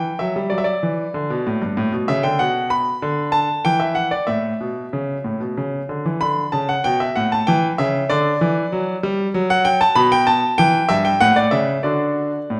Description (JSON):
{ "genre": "classical-period piano sonatina", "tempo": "95 BPM", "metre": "3/4", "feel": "rubato", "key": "D major", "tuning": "A4 = 440 Hz", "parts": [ { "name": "clear concert grand piano", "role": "solo", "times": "0.0-12.6 s", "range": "G2 to B5", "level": "-19 LUFS", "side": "equal", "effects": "none" } ], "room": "wet recital hall reverb, RT60 1.4 s", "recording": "none", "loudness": "-19 LUFS", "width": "mono", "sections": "0.0-12.6 A section", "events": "none", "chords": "0.0 Emadd9; 0.5 D5; 2.4 Bm; 3.6 N.C.; 4.3 A; 6.2 D5; 7.5 C#dim/E; 8.1 D; 10.0 N.C.; 10.6 Em; 11.2 A; 11.9 D" }